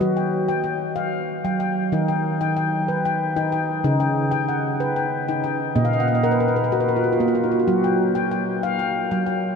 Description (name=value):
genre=world meditative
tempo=94 BPM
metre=3/4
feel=straight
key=unclear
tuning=A4 = 444 Hz
part: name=handpan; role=solo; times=0.0-9.6 s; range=A#2 to G5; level=-19 LUFS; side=left 1 dB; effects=ping-pong delay
room=wet huge ambient reverb, RT60 8.5 s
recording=dreamy mix soaked in reverb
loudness=-19 LUFS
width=side -5 dB against mid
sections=0.0-9.6 A section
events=handpan fill 5.8-7.7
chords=0.0 Gmaj7(no3)/F#; 1.9 Ebaug; 3.8 Eb7alt/Db; 5.8 Bmaj7#11/A#; 7.7 Fsus2